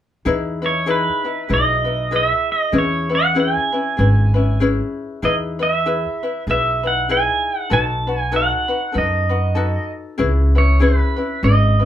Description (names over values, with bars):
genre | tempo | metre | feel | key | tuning
Hawaiian | 97 BPM | 4/4 | swing 60% on 8ths | E major | A4 = 438 Hz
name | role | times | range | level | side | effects
ukulele | accompaniment | 0.3-11.9 s | C#4 to B4 | -22 LUFS | left 4 dB | none
upright bass | bass | 0.3-11.9 s | G#1 to F#2 | -18 LUFS | equal | none
pedal steel guitar | melody | 0.7-11.9 s | B4 to A5 | -19 LUFS | right 2 dB | none
room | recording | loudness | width
moderate small room reverb, RT60 0.5 s | band playing live in one room | -16 LUFS | side -11 dB against mid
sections
0.3-11.9 A section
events
none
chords
0.3 Emaj7; 2.7 C#m7/E; 5.2 Emaj7; 7.7 B7; 10.2 C#m7